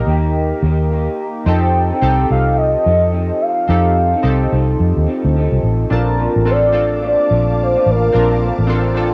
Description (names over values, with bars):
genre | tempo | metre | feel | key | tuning
indie pop, bedroom pop | 108 BPM | 4/4 | swing 60% on 16ths | Bb major | A4 = 440 Hz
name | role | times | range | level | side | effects
chorused retro synth keys | accompaniment | 0.0-9.1 s | Bb3 to A5 | -23 LUFS | equal | cassette tape
electric guitar through a small old amp | accompaniment | 0.0-9.1 s | Bb2 to A4 | -27 LUFS | equal | lush chorus, vibrato effect, cassette tape
vintage muted fingered electric bass | bass | 0.1-9.1 s | A1 to F2 | -18 LUFS | equal | none
warm velvety synth lead | melody | 1.5-8.4 s | Bb4 to G5 | -20 LUFS | equal | subtle chorus, cassette tape, analog delay
ethereal airy pad | sustained chords | 6.7-9.1 s | F5 to D6 | -30 LUFS | equal | ensemble chorus, built-in reverb, tremolo, cassette tape
room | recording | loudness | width
moderate spring reverb, RT60 1.1 s, digital ambience | home recording on cassette | -15 LUFS | mono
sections
0.0-5.9 A section; 5.9-9.1 B section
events
none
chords
0.0 Eb; 1.5 F7; 5.9 Bbmaj7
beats
0.35 0.91 | 1.46 2.02 2.57 3.13 | 3.69 4.24 4.80 5.35 | 5.91 6.46 7.02 7.58 | 8.13 8.69